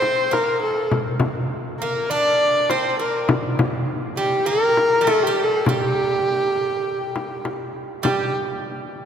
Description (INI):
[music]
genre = Turkish makam ensemble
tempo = 101 BPM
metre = 4/4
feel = straight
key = G makam huseyni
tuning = A4 = 440 Hz
[part]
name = rich kamancheh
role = melody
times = 0.0-8.3 s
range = G4 to D5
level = -20 LUFS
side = equal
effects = none
[part]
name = Greek bouzouki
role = second line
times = 0.0-8.3 s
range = G3 to D4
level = -28 LUFS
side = right 4 dB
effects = none
[part]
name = frame drum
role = percussion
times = 0.0-8.3 s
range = none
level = -25 LUFS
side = left 2 dB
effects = none
[sound]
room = wet cathedral reverb, RT60 4.8 s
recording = recorded in a church or concert hall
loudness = -18 LUFS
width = side -8 dB against mid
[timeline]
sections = 0.0-8.1 A section; 8.1-9.1 B section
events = none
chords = none